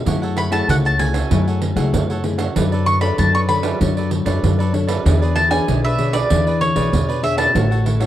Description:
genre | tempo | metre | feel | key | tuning
samba and choro | 96 BPM | 4/4 | straight | unclear | A4 = 440 Hz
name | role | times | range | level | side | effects
nylon-string guitar | accompaniment | 0.0-8.1 s | B2 to C#5 | -22 LUFS | left 5 dB | none
cavaquinho | accompaniment | 0.1-8.1 s | D4 to F#5 | -28 LUFS | right 4 dB | none
upright bass | bass | 0.1-8.1 s | A1 to F#2 | -19 LUFS | equal | none
pandeiro | percussion | 0.1-8.1 s | none | -23 LUFS | right 6 dB | none
mandolin | melody | 0.4-8.1 s | C#5 to C#6 | -20 LUFS | equal | none
room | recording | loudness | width
small room ambience | dry, close 1970s-style studio recording | -15 LUFS | side -12 dB against mid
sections
0.0-8.1 A section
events
none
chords
0.1 F#m9; 2.6 Bm9/F#; 5.1 E6; 7.6 A6

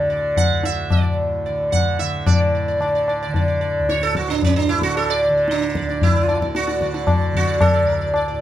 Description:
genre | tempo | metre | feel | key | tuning
indian classical, Hindustani | 112 BPM | 5/4 | straight | D raga hamsadhwani | A4 = 439 Hz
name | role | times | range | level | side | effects
sitar | melody | 0.0-8.4 s | C#4 to F#5 | -20 LUFS | right 1 dB | none
tanpura | drone | 0.0-8.4 s | D2 to D3 | -27 LUFS | right 2 dB | none
tabla | percussion | 0.4-8.3 s | none | -20 LUFS | left 2 dB | none
room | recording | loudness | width
light reverb | close, detailed microphones | -17 LUFS | side -12 dB against mid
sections
0.0-2.3 A section; 2.3-8.4 B section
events
speeding up 0.0-8.4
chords
none

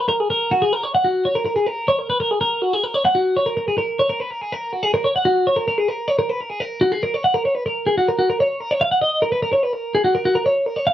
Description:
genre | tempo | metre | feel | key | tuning
rock | 143 BPM | 5/4 | straight | F# major | A4 = 439 Hz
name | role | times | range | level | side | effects
twelve-string electric guitar | solo | 0.0-10.9 s | F#4 to F#5 | -17 LUFS | equal | none
room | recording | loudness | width
wet studio reverb, RT60 0.5 s | worn, warbling old tape, cassette tape, warbly pitch drift | -17 LUFS | side -12 dB against mid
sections
0.0-7.3 A section; 7.3-10.9 B section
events
none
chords
none

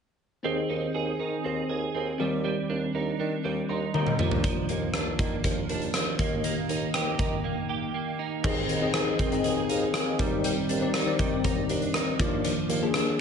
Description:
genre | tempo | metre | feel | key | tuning
1980s-style pop | 120 BPM | 4/4 | straight | unclear | A4 = 440 Hz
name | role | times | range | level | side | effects
bell-like tine electric piano | accompaniment | 0.4-13.2 s | Eb3 to C6 | -30 LUFS | left 4 dB | ensemble chorus
clean electric guitar | riff | 0.4-13.2 s | F3 to Ab4 | -32 LUFS | right 9 dB | ensemble chorus, digital delay
mellow bassoon | bass | 0.4-13.1 s | Eb2 to Eb3 | -33 LUFS | equal | none
huge arena drum kit | drums | 3.9-13.1 s | crash cymbal, hi-hat, kick drum, rim click, toms | -28 LUFS | equal | gated reverb
room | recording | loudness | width
light reverb, studio ambience | nothing above 10.8 kHz | -25 LUFS | side -6 dB against mid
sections
0.4-8.4 A section; 8.4-13.2 B section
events
tine electric piano fill 3.7-4.4; drum fill 3.9-4.4; break 7.4-8.4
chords
0.4 Ab/Eb; 2.2 Cmadd9/Eb; 4.2 Bb/Eb; 6.2 Eb; 8.4 Ab/Eb; 10.2 Cmadd9/Eb; 12.2 Bb/Eb

